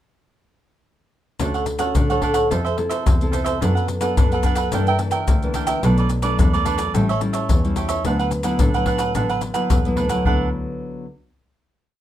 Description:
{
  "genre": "samba and choro",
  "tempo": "108 BPM",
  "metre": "4/4",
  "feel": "straight",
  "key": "D major",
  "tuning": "A4 = 436 Hz",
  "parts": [
    { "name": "cavaquinho", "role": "accompaniment", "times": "1.4-10.5 s", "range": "D4 to G5", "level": "-24 LUFS", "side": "right 6 dB", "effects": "none" },
    { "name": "nylon-string guitar", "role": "accompaniment", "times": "1.4-11.1 s", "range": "F#2 to A4", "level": "-24 LUFS", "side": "left 2 dB", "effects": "none" },
    { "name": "rich double bass", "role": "bass", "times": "1.4-10.5 s", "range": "A1 to D3", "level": "-24 LUFS", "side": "equal", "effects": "none" },
    { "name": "maracas, surdo and pandeiro", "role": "percussion", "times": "1.4-10.4 s", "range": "none", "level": "-21 LUFS", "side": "left 2 dB", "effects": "none" }
  ],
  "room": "moderate studio reverb, RT60 0.5 s",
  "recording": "minimal, uncompressed stereo recording",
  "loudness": "-17 LUFS",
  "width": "side -12 dB against mid",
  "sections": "1.4-10.3 A section; 10.3-12.0 final chord",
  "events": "none",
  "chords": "1.4 Dmaj7; 2.5 Fmaj7; 3.6 D6/F#; 4.7 Gm6; 5.8 Bm7; 6.9 A7; 8.1 D69"
}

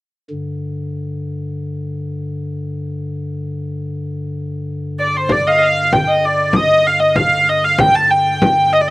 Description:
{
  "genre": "medieval dance",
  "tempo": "96 BPM",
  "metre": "2/4",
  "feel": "straight",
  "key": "unclear",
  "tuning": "A4 = 440 Hz",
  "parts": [
    { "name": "chamber organ, stopped flute", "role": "drone", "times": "0.3-8.9 s", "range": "G2 to D3", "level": "-24 LUFS", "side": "left 1 dB", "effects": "none" },
    { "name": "warm hurdy-gurdy", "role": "melody", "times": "5.0-8.9 s", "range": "C5 to A5", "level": "-12 LUFS", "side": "equal", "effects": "none" },
    { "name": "frame drum", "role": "percussion", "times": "5.3-8.7 s", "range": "none", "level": "-18 LUFS", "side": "left 1 dB", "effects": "none" }
  ],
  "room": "little or no reverb",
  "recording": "recorded outdoors, with no room sound",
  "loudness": "-14 LUFS",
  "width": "side -19 dB against mid",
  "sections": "0.3-5.3 A section; 5.3-8.9 B section",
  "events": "none",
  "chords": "none"
}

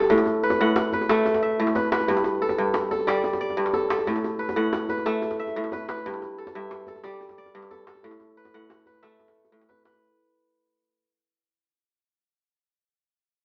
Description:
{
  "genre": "west african traditional, West African string and xylophone music",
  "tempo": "121 BPM (dotted quarters)",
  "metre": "12/8",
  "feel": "straight",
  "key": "unclear",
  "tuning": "A4 = 441 Hz",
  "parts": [
    { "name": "kora", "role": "arpeggios", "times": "0.0-11.1 s", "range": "G2 to F#5", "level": "-25 LUFS", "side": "equal", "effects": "none" },
    { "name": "djembe", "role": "percussion", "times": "0.0-10.0 s", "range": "none", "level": "-33 LUFS", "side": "equal", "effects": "none" }
  ],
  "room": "wet studio reverb, RT60 0.8 s",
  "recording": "band playing live in one room, AM radio sound",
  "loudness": "-24 LUFS",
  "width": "mono",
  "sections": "0.0-10.0 A section",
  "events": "fade-out 0.0-10.0",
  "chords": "0.1 A5; 2.1 G; 4.1 A5; 6.0 G; 8.0 A5"
}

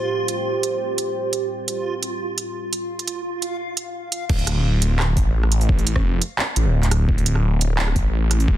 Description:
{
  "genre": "half-time drum and bass",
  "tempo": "172 BPM",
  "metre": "4/4",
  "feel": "half-time",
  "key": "D minor",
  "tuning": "A4 = 440 Hz",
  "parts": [
    { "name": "dark analog pad", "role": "sustained chords", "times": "0.0-4.3 s", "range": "A3 to C5", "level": "-24 LUFS", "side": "right 3 dB", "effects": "chorus, phaser, sidechain pumping" },
    { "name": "backwards swelling texture", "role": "texture", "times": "0.0-4.3 s", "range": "F4", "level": "-30 LUFS", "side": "equal", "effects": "built-in reverb" },
    { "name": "industrial drum kit", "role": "drums", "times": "0.3-8.5 s", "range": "crash cymbal, handclaps, hi-hat, rim click", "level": "-25 LUFS", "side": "right 3 dB", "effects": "studio reverb" },
    { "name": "phased detuned saw bass", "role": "bass", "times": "4.3-8.6 s", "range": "D1 to A1", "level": "-18 LUFS", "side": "equal", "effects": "phaser" },
    { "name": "electronic kick drum", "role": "drums", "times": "4.3-8.6 s", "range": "none", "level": "-20 LUFS", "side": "equal", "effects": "studio reverb" }
  ],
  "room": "little or no reverb",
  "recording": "dense, heavily limited modern master",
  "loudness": "-19 LUFS",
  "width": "side -12 dB against mid",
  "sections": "0.0-4.3 A section; 4.3-8.6 B section",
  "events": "drop 4.3-8.6",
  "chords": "0.0 Fadd9; 4.3 D5"
}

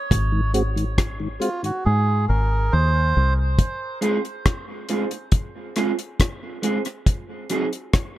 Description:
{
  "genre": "dub reggae",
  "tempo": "69 BPM",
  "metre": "4/4",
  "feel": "straight",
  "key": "unclear",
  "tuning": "A4 = 443 Hz",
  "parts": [
    { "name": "deep dub fingered electric bass", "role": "bass", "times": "0.1-3.6 s", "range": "Ab1 to Ab2", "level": "-20 LUFS", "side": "equal", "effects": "none" },
    { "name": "deep reggae drum kit", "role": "drums", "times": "0.1-8.1 s", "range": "hi-hat, kick drum, rim click", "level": "-20 LUFS", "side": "equal", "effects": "none" },
    { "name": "mellow tonewheel organ", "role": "accompaniment", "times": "0.3-1.7 s", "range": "Ab2 to Gb4", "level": "-25 LUFS", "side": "left 1 dB", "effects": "chorus vibrato, slow rotary speaker, high-pass filter" },
    { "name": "melodica", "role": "melody", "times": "1.4-3.3 s", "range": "F4 to C5", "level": "-26 LUFS", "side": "right 3 dB", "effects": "tape echo" },
    { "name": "electric guitar at the edge of break-up", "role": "accompaniment", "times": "4.0-7.7 s", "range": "Gb3 to Ab4", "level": "-25 LUFS", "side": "right 2 dB", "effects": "wide subtle chorus, tape echo" }
  ],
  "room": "light reverb",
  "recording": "none",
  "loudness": "-20 LUFS",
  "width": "side -15 dB against mid",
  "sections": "0.0-3.6 A section; 3.6-8.2 B section",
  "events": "break 0.0-3.6; drums muted 1.8-3.6",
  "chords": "0.1 Ab; 3.6 Ab6; 7.1 Ab7"
}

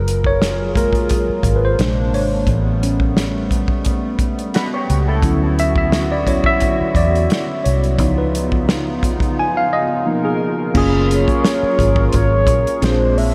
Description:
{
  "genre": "R&B, neo-soul",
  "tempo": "87 BPM",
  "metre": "4/4",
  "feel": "swing 54% on 16ths",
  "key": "F# major",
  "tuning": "A4 = 441 Hz",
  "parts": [
    { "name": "tine electric piano", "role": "accompaniment", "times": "0.0-13.3 s", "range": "B#2 to G#5", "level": "-22 LUFS", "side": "equal", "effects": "none" },
    { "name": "hollow soft pad", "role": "sustained chords", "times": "0.0-13.3 s", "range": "B2 to A#4", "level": "-26 LUFS", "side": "equal", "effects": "chorus" },
    { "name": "vintage muted fingered electric bass", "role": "bass", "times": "0.0-13.3 s", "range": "F#1 to E2", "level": "-21 LUFS", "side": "equal", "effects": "none" },
    { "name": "warm soul drum kit", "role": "drums", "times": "0.1-13.3 s", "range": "crash cymbal, hi-hat, kick drum, snare drum", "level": "-22 LUFS", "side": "equal", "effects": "none" },
    { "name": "electric guitar through a small old amp", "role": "second line", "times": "4.5-5.4 s", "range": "E4 to C#5", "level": "-30 LUFS", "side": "equal", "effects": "analog chorus, analog delay" },
    { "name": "mellow horn-like synth lead", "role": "melody", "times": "11.1-13.3 s", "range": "B#4 to E5", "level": "-21 LUFS", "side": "equal", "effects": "chorus, analog delay" }
  ],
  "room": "moderate huge ambient reverb, RT60 8.4 s",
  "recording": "dreamy mix soaked in reverb",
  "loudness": "-17 LUFS",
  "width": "mono",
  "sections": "0.0-10.7 A section; 10.7-13.3 B section",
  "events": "tine electric piano solo 0.0-10.7; silent gap 9.4-10.7",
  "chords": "0.0 F#maj9; 1.8 A#9; 2.5 A9; 5.2 Dmaj9; 8.0 C#9; 10.1 C#13; 10.7 F#maj9; 12.8 A#9"
}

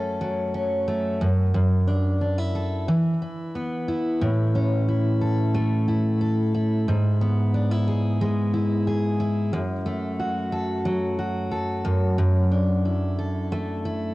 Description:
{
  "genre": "pop",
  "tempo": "90 BPM",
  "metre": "4/4",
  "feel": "straight",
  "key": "A major",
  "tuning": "A4 = 439 Hz",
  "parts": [
    { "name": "picked steel-string acoustic guitar", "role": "solo", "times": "0.0-14.1 s", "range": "F#2 to A4", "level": "-21 LUFS", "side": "equal", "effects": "cassette tape" }
  ],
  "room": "light reverb, studio ambience",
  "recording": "home recording on cassette",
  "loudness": "-21 LUFS",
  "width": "side -18 dB against mid",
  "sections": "0.0-4.2 A section; 4.2-14.1 B section",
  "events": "none",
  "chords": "0.0 F#m; 1.2 Dadd9/F#; 2.9 E5; 4.2 A; 6.9 E/G#; 9.5 F#m; 11.9 Dadd9/F#"
}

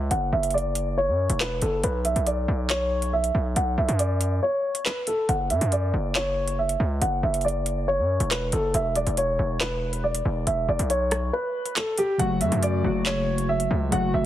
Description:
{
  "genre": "hip hop, drill",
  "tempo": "139 BPM",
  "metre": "4/4",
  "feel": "half-time",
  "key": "F# minor",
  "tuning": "A4 = 440 Hz",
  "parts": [
    { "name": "dark grand piano", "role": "melody", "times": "0.0-14.3 s", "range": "G4 to F#5", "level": "-25 LUFS", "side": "equal", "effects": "low-pass filter" },
    { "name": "distorted 808-style bass", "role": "bass", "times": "0.0-14.3 s", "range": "E1 to F#2", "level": "-26 LUFS", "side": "equal", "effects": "distortion" },
    { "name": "drill drum kit", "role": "drums", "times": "0.1-14.0 s", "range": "handclaps, hi-hat, rim click", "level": "-29 LUFS", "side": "right 1 dB", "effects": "none" },
    { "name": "warbly lo-fi synth keys", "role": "accompaniment", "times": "12.2-14.3 s", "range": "C#3 to F#4", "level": "-25 LUFS", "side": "left 1 dB", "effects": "chorus, low-pass filter" }
  ],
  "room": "light reverb",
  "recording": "heavily compressed radio sound, multiband compression",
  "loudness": "-22 LUFS",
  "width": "side -12 dB against mid",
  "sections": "0.0-14.3 A section",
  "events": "filter sweep 0.0-12.2; kick muted 4.4-5.3, 11.3-12.2",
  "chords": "0.0 F#5; 1.8 Bm; 5.3 F#5; 8.7 E5; 12.2 F#m"
}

